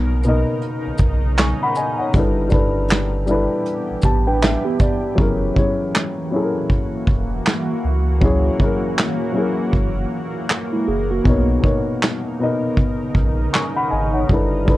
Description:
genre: lo-fi hip hop.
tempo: 79 BPM.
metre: 4/4.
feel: swing 62% on 16ths.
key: B major.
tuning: A4 = 440 Hz.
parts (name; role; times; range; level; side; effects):
dark upright piano; accompaniment; 0.0-14.8 s; B2 to C#6; -21 LUFS; left 2 dB; low-pass filter.
granular cloud pad; sustained chords; 0.0-14.8 s; C#3 to A#4; -26 LUFS; right 1 dB; built-in reverb, low-pass filter.
warm sub bass; bass; 0.0-14.8 s; E1 to C#2; -21 LUFS; equal; none.
vintage brush drum kit; drums; 0.2-14.8 s; handclaps, hi-hat, kick drum, shaker, snare drum; -18 LUFS; equal; none.
mellow tine electric piano; second line; 4.0-5.2, 10.7-11.5 s; G#3 to B4; -25 LUFS; right 4 dB; medium stereo tremolo, low-pass filter, analog delay.
room: light reverb.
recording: worn, warbling old tape, cassette tape, warbly pitch drift.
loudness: -16 LUFS.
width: side -16 dB against mid.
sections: 0.0-5.2 A section; 5.2-14.8 B section.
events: hi-hats muted 5.2-14.8.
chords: 0.0 Bmaj9; 2.1 G6; 5.2 F#7; 11.3 Bmaj9.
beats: 0.62 1.38 | 2.14 2.90 3.66 4.42 | 5.18 5.94 6.70 7.46 | 8.22 8.97 9.73 10.49 | 11.25 12.01 12.77 13.53 | 14.29.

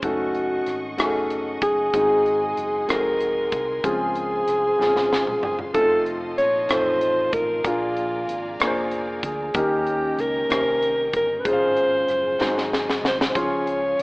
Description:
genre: slow gospel.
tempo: 63 BPM (dotted quarters).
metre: 6/8.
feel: straight.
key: Db major.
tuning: A4 = 440 Hz.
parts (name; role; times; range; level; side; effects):
mellow alto saxophone; melody; 0.0-14.0 s; F4 to Db5; -22 LUFS; equal; none.
warm grand piano; accompaniment; 0.0-14.0 s; Ab2 to C6; -25 LUFS; left 1 dB; none.
bright studio string section; sustained chords; 0.0-14.0 s; Db4 to Db6; -36 LUFS; equal; none.
fingered electric bass; bass; 0.0-14.0 s; F1 to Eb2; -40 LUFS; equal; none.
crisp fusion drum kit; drums; 0.0-14.0 s; hi-hat, kick drum, rim click, snare drum, toms; -26 LUFS; equal; none.
percussive tonewheel organ; sustained chords; 5.8-14.0 s; C3 to Ab4; -34 LUFS; right 1 dB; none.
room: moderate lush hall reverb, RT60 2.2 s.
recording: rough home demo mix, AM radio sound.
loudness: -20 LUFS.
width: side -26 dB against mid.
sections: 0.0-14.0 A section.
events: drum fill 4.8-5.7, 12.4-13.4.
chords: 0.0 Gbm6; 1.9 Ab7; 3.8 Dbmaj7; 5.7 F7; 7.7 Bb7; 9.6 Eb7; 11.5 Db/Ab; 12.4 Ab7; 13.4 Dbmaj7.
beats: | 0.03 0.98 | 1.94 2.89 | 3.84 4.80 | 5.75 6.70 | 7.65 8.60 | 9.55 10.50 | 11.45 12.40 | 13.35.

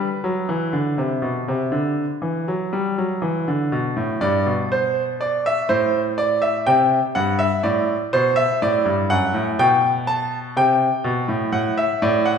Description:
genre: classical, baroque-style two-part invention for grand piano.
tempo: 61 BPM.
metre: 4/4.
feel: straight.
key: G major.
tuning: A4 = 441 Hz.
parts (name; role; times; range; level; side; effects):
bright grand piano; solo; 0.0-12.4 s; F#2 to A5; -18 LUFS; equal; none.
room: wet recital hall reverb, RT60 1.5 s.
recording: recorded in a church or concert hall.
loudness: -18 LUFS.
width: side -7 dB against mid.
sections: 0.0-3.7 A section; 3.7-12.4 B section.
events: none.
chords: 0.0 G (rootless); 3.7 G; 5.7 Am7; 7.7 D7/A; 9.6 G/B; 11.5 D/A.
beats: 0.74 1.74 2.73 | 3.73 4.71 5.70 6.68 | 7.65 8.62 9.60 10.56 | 11.53.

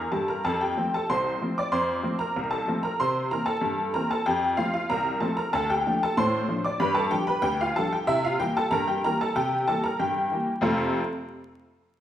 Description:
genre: ragtime piano.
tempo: 94 BPM.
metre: 2/4.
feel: straight.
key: F major.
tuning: A4 = 439 Hz.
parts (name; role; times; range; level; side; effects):
honky-tonk upright piano; solo; 0.0-11.0 s; C2 to D6; -23 LUFS; equal; none.
room: wet large studio reverb, RT60 1.3 s.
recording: band playing live in one room, vinyl crackle.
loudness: -23 LUFS.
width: side -10 dB against mid.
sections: 0.0-10.6 A section; 10.6-11.9 B section.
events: honky-tonk piano fill 0.0-0.4.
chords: 0.4 F; 3.0 C7; 4.3 F; 5.5 Dm; 6.8 G7; 8.1 C7; 10.6 F.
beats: | 0.44 1.08 | 1.72 2.36 | 3.00 3.63 | 4.27 4.91 | 5.54 6.17 | 6.81 7.45 | 8.08 8.72 | 9.36 10.00 | 10.64.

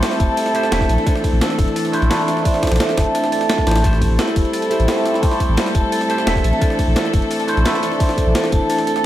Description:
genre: liquid drum and bass.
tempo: 173 BPM.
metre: 4/4.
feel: straight.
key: unclear.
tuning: A4 = 440 Hz.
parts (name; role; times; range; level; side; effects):
bell-like tine electric piano; accompaniment; 0.0-9.1 s; A3 to E5; -21 LUFS; equal; phaser, diffuse ambient delay.
dark chamber string section; sustained chords; 0.0-9.1 s; E3 to A4; -24 LUFS; left 2 dB; sidechain pumping.
vibraphone with hard mallets; arpeggios; 0.0-9.1 s; E4 to A5; -22 LUFS; right 2 dB; auto-pan, diffuse ambient delay.
breakbeat sampler-style drum kit; drums; 0.0-9.0 s; hi-hat, snare drum; -25 LUFS; equal; small room ambience.
jungle sampler-style drum kit; drums; 0.0-9.0 s; hi-hat, ride cymbal, snare drum; -28 LUFS; equal; high-pass filter on cymbals, small room ambience, high-pass filter on snare, high-pass filter on hats.
warm sub bass; bass; 0.2-8.6 s; E1 to Bb1; -18 LUFS; equal; tube saturation.
electronic kick drum; drums; 0.2-8.6 s; none; -18 LUFS; equal; small room ambience.
room: moderate plate reverb, RT60 1.7 s, digital ambience.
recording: dreamy mix soaked in reverb.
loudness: -15 LUFS.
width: side -13 dB against mid.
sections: 0.0-9.1 A section.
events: none.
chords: 0.0 Am7; 0.9 Bbmaj9#11 (rootless); 3.8 Am7; 6.4 Bbmaj9#11 (rootless).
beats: 0.03 0.37 0.72 | 1.07 1.41 1.76 2.11 | 2.45 2.80 3.15 3.49 | 3.84 4.19 4.53 4.88 | 5.23 5.58 5.92 6.27 | 6.62 6.96 7.31 7.66 | 8.00 8.35 8.70 9.04.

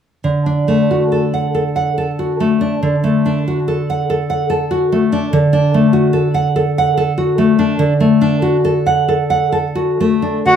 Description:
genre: romantic duo for bandoneon and classical guitar.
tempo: 62-73 BPM.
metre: 3/4.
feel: rubato.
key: D major.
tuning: A4 = 438 Hz.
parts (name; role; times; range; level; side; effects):
nylon-string guitar; accompaniment; 0.2-10.6 s; D3 to F#5; -13 LUFS; equal; none.
bandoneon; melody; 10.5-10.6 s; F#4; -8 LUFS; right 1 dB; none.
room: light reverb.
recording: band playing live in one room.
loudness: -13 LUFS.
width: side -8 dB against mid.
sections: 0.2-10.5 A section.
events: none.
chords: 0.2 D.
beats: | 0.22 1.10 1.97 | 2.82 3.67 4.50 | 5.32 6.14 6.98 | 7.81 8.65 9.54 | 10.46.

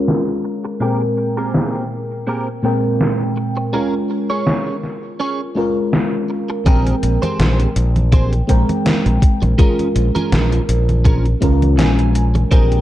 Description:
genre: vaporwave.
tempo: 82 BPM.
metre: 4/4.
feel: swing 55% on 16ths.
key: Bb dorian.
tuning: A4 = 441 Hz.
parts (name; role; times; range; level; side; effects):
mellow FM electric piano; accompaniment; 0.0-12.8 s; Bb2 to G5; -19 LUFS; equal; lush chorus, tape echo.
gated 80s digital drum machine; drums; 0.1-12.8 s; congas, hi-hat, snare drum; -21 LUFS; equal; gated reverb, gated reverb snare, overdrive, low-pass filter on snare, low-pass filter on hats, low-pass filter on perc, low-pass filter on room.
clean electric guitar; riff; 0.4-12.8 s; Bb2 to Ab5; -24 LUFS; right 3 dB; analog chorus, low-pass filter, tape echo.
modern bright fingered electric bass; bass; 6.7-12.8 s; Bb1 to Db2; -15 LUFS; equal; none.
electronic kick drum; drums; 6.7-12.7 s; none; -13 LUFS; equal; overdrive.
room: light reverb.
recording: dark, warm production, low-pass filter.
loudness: -14 LUFS.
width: side -14 dB against mid.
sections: 0.0-6.7 A section; 6.7-12.8 B section.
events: filter sweep on clean electric guitar 0.0-6.7; filter sweep 0.0-6.7; clean electric guitar fill 11.4-12.5.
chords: 0.0 Bbm7; 0.8 Abmaj9/Bb; 3.7 Bbm7; 6.7 Abmaj9/Bb; 9.6 Bbm7.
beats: 0.08 | 0.81 1.54 2.27 3.00 | 3.74 4.47 5.20 5.93 | 6.66 7.39 8.13 8.86 | 9.59 10.32 11.05 11.79 | 12.52.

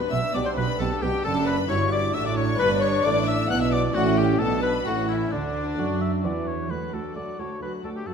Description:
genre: classical, baroque-style concerto movement with solo episodes.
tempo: 132 BPM.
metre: 3/4.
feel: straight.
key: D major.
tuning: A4 = 441 Hz.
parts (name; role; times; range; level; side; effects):
rich chamber violin section; second line; 0.0-8.1 s; D4 to F#5; -29 LUFS; left 4 dB; none.
lute; accompaniment; 0.0-8.1 s; D2 to G4; -31 LUFS; left 1 dB; none.
rich chamber viola section; accompaniment; 0.0-8.1 s; F#3 to E4; -31 LUFS; equal; none.
rich chamber violin section; melody; 0.1-8.1 s; D5 to F#6; -34 LUFS; left 4 dB; none.
warm oboe; melody; 0.1-8.1 s; D4 to F#5; -29 LUFS; left 3 dB; none.
rich studio cello section; bass; 0.1-8.1 s; D2 to F#3; -29 LUFS; right 4 dB; none.
rich studio double bass section; bass; 0.1-6.7 s; F#1 to F#2; -29 LUFS; right 5 dB; none.
room: moderate recital hall reverb, RT60 1.5 s.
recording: none.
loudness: -22 LUFS.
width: side -6 dB against mid.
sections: 0.0-6.7 A section; 6.7-8.1 B section.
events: none.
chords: 0.0 G/B; 1.2 D/F#; 2.6 Em7/G; 4.0 A; 4.4 Bm; 4.9 A; 5.3 D.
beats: 0.35 0.80 | 1.25 1.70 2.15 | 2.60 3.05 3.50 | 3.95 4.41 4.86 | 5.33 5.79 6.25 | 6.71 7.17 7.62 | 8.07.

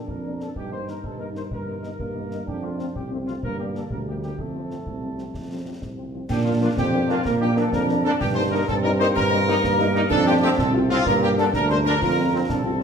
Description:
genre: military-style march for wind band.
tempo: 126 BPM (dotted quarters).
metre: 6/8.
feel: straight.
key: Bb major.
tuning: A4 = 441 Hz.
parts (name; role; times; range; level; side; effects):
dark trumpet section; melody; 0.0-12.8 s; F4 to C5; -28 LUFS; equal; none.
clear euphonium; second line; 0.0-12.8 s; G3 to F4; -28 LUFS; right 4 dB; none.
warm tuba; bass; 0.1-12.8 s; C2 to Bb2; -25 LUFS; right 2 dB; none.
concert bass drum, concert snare drum and clash cymbals; drums; 0.1-12.8 s; none; -32 LUFS; left 1 dB; none.
mellow French horn section; accompaniment; 0.2-12.7 s; D3 to F4; -30 LUFS; left 5 dB; none.
mellow large flute ensemble; second line; 6.3-12.8 s; F5 to C6; -29 LUFS; left 3 dB; none.
warm trombone section; sustained chords; 6.6-12.8 s; D3 to Eb4; -30 LUFS; equal; none.
room: wet recital hall reverb, RT60 1.6 s.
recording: minimal, uncompressed stereo recording.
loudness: -20 LUFS.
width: side -6 dB against mid.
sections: 0.0-6.3 A section; 6.3-12.8 A section.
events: none.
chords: 0.0 Bb; 0.6 Eb/G; 2.5 F; 3.4 Gm; 4.4 F; 6.3 Bb; 8.2 Eb/G; 10.1 F; 11.1 Gm; 12.0 F.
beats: 0.08 | 0.56 1.04 | 1.52 1.99 | 2.47 2.95 | 3.43 3.91 | 4.39 4.86 | 5.34 5.82 | 6.30 6.77 | 7.25 7.73 | 8.20 8.68 | 9.16 9.63 | 10.11 10.59 | 11.06 11.54 | 12.01 12.49.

